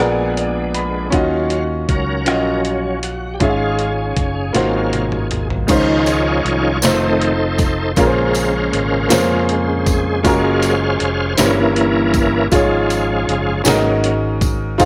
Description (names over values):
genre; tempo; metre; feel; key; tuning
slow gospel; 53 BPM (dotted quarters); 6/8; straight; Db major; A4 = 444 Hz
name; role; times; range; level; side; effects
clear grand piano; accompaniment; 0.0-14.9 s; G2 to Cb6; -20 LUFS; equal; none
bright tonewheel organ; sustained chords; 0.0-14.9 s; Db3 to F5; -22 LUFS; equal; fast rotary speaker, overdrive, chorus vibrato
fingered electric bass; bass; 0.0-14.9 s; F1 to F2; -25 LUFS; equal; none
trip hop sampler-style drum kit; drums; 0.0-14.9 s; crash cymbal, hi-hat, kick drum, rim click, snare drum, toms; -23 LUFS; equal; none
tambourine; percussion; 5.7-14.9 s; none; -29 LUFS; equal; none
room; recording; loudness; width
light reverb, digital ambience; none; -17 LUFS; mono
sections
0.0-5.7 A section; 5.7-14.9 B section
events
grand piano fill 0.0-1.1; tonewheel organ solo 0.0-5.7, 5.7-14.9; drum fill 4.6-5.7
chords
0.0 Bb7b9; 1.1 Ebm9; 3.4 Db/Ab; 4.6 Ab13; 5.7 Dbmaj9; 6.8 F7; 8.0 Bbm9; 10.2 Gbmaj9; 11.4 Gdim7; 12.5 Db/Ab; 13.7 Ab9sus4